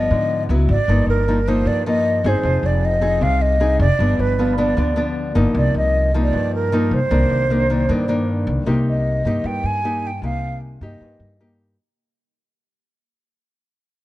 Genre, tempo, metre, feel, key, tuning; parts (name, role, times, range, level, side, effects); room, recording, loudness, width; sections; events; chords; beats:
bossa nova; 154 BPM; 4/4; straight; C minor; A4 = 442 Hz
mellow hollow silver concert flute; melody; 0.0-11.6 s; Bb4 to Ab5; -22 LUFS; right 1 dB
nylon-string guitar; accompaniment; 0.0-11.8 s; G2 to Ab4; -21 LUFS; left 2 dB
upright bass; bass; 0.0-11.7 s; F1 to Ab2; -20 LUFS; equal
warm grand piano; accompaniment; 4.4-8.7 s; D5 to B5; -36 LUFS; right 5 dB
light reverb; -16 LUFS; side -16 dB against mid
0.0-8.7 A section; 8.7-11.8 B section
fade-out 8.7-11.8
0.5 Dbm7; 0.9 Cm7/G; 2.4 Fm7; 4.0 G7; 5.5 Cm7; 7.1 Cm9; 8.7 Cm7
0.10 0.49 | 0.88 1.27 1.66 2.04 | 2.44 2.82 3.21 3.60 | 3.99 4.38 4.77 5.16 | 5.55 5.94 6.33 6.72 | 7.11 7.50 7.88 8.27 | 8.66 9.05 9.44 9.83 | 10.22 10.61 11.00 11.39